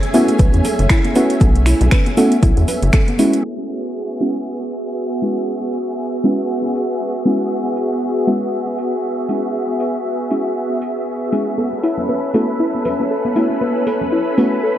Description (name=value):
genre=deep house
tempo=118 BPM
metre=4/4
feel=swing 57% on 16ths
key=F# minor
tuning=A4 = 440 Hz
part: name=soft string machine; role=sustained chords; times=0.0-14.8 s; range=A3 to E5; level=-21 LUFS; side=equal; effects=ensemble chorus, sidechain pumping
part: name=deep mellow chord stab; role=stabs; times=0.0-14.5 s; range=G#3 to G#4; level=-19 LUFS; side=equal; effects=chorus, sidechain pumping, analog delay
part: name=house drum kit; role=drums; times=0.0-14.5 s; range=crash cymbal, finger snaps, hi-hat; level=-25 LUFS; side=equal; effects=none
part: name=tube shaker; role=percussion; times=0.0-3.4 s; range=none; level=-36 LUFS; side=right 4 dB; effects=none
part: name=soft string machine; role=texture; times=0.0-3.5, 11.6-14.8 s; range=G#4 to B5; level=-30 LUFS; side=equal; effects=ensemble chorus, sidechain pumping
part: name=soft round pluck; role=arpeggios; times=0.1-3.3, 11.6-14.7 s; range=E4 to B4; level=-22 LUFS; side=left 1 dB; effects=chorus, sidechain pumping, analog delay
part: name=congas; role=percussion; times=0.1-3.2, 11.6-14.5 s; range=none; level=-24 LUFS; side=left 1 dB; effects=sidechain pumping on perc
part: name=rubbery square bass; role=bass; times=0.4-2.9 s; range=F#1 to E2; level=-15 LUFS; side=equal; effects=sidechain pumping
part: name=electronic kick drum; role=drums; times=0.4-3.1 s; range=none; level=-14 LUFS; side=equal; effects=overdrive
room=light reverb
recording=dry, gritty hardware recording, vinyl crackle, low-pass filter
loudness=-15 LUFS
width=side -12 dB against mid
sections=0.0-3.4 A section; 3.4-14.8 B section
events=filter sweep 3.4-14.8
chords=0.0 B9sus4; 3.4 F#9sus4; 11.6 B9sus4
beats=0.39 0.90 | 1.41 1.92 2.43 2.94 | 3.44 3.95 4.46 4.97 | 5.48 5.99 6.50 7.00 | 7.51 8.02 8.53 9.04 | 9.55 10.05 10.56 11.07 | 11.58 12.09 12.60 13.11 | 13.61 14.12 14.63